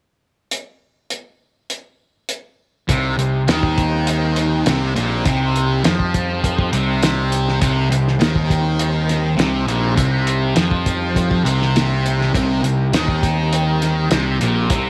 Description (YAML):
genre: psychedelic rock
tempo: 102 BPM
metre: 4/4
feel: straight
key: C minor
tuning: A4 = 442 Hz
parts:
  - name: cloth-damped thuddy drum kit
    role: drums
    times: 0.5-14.8 s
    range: hi-hat, kick drum, snare drum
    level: -23 LUFS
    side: equal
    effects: none
  - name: tonewheel organ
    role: sustained chords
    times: 2.9-14.9 s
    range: G3 to C5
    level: -32 LUFS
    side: equal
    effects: none
  - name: thick fuzz guitar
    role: riff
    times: 2.9-14.9 s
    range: Bb2 to F3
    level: -22 LUFS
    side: equal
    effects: distortion, phaser
  - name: fuzz picked electric bass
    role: bass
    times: 2.9-14.9 s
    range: Bb1 to F2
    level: -22 LUFS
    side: equal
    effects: overdrive
room: light reverb, small room reverb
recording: none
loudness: -18 LUFS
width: mono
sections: 0.5-2.9 A section; 2.9-14.9 B section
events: none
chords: 0.5 N.C.; 2.9 Cm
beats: | 0.52 1.11 1.70 2.30 | 2.89 3.48 4.07 4.67 | 5.26 5.85 6.44 7.03 | 7.62 8.21 8.80 9.39 | 9.98 10.57 11.16 11.76 | 12.35 12.94 13.53 14.12 | 14.71